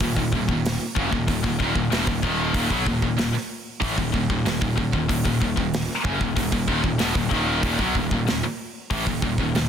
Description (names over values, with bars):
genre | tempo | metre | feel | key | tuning
heavy metal | 94 BPM | 4/4 | straight | Eb minor | A4 = 440 Hz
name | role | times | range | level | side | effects
scooped high-gain guitar | riff | 0.0-9.7 s | Eb2 to Gb3 | -26 LUFS | left 8 dB | distortion
scooped high-gain guitar | riff | 0.0-9.7 s | Eb2 to Gb3 | -26 LUFS | right 10 dB | distortion
fuzz picked electric bass | bass | 0.0-9.7 s | Eb1 to Cb2 | -28 LUFS | equal | overdrive
big rock drum kit | drums | 0.0-9.7 s | hi-hat, kick drum, snare drum | -26 LUFS | equal | none
room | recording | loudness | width
small room ambience | dense, heavily limited modern master | -21 LUFS | side -8 dB against mid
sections
0.0-9.7 A section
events
none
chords
0.0 Ebm